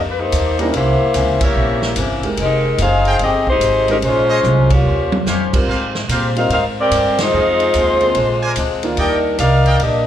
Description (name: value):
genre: jazz, big band swing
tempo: 146 BPM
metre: 4/4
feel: swing 66% on 8ths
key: Eb major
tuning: A4 = 444 Hz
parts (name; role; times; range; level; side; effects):
- picked swing-style acoustic guitar; accompaniment; 0.0-10.1 s; F2 to C5; -26 LUFS; left 4 dB; slapback echo
- upright bass; bass; 0.0-10.1 s; F1 to Bb2; -19 LUFS; right 1 dB; none
- mellow saxophone section; melody; 0.1-10.1 s; G3 to F5; -15 LUFS; left 1 dB; slapback echo
- swinging big-band drum kit; drums; 0.3-9.9 s; crash cymbal, hi-hat, kick drum, ride cymbal, snare drum, toms; -23 LUFS; equal; none
- warm concert grand piano; accompaniment; 0.6-9.0 s; D3 to C5; -23 LUFS; right 3 dB; slapback echo
- clear trumpet section; stabs; 1.4-9.8 s; C4 to Ab5; -24 LUFS; right 2 dB; slapback echo
room: light reverb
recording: live gig heard through the venue's PA, club reverb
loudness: -13 LUFS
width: side -10 dB against mid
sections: 0.0-10.1 A section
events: band accent 1.4, 4.6, 7.1; drum fill 4.4-5.3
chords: 0.0 Ebmaj7; 0.7 C7b9; 2.4 Fm11; 4.0 Bbm11; 4.9 Eb13; 5.7 Abmaj13; 7.3 Fm7; 8.2 Bb9; 9.0 Ebmaj7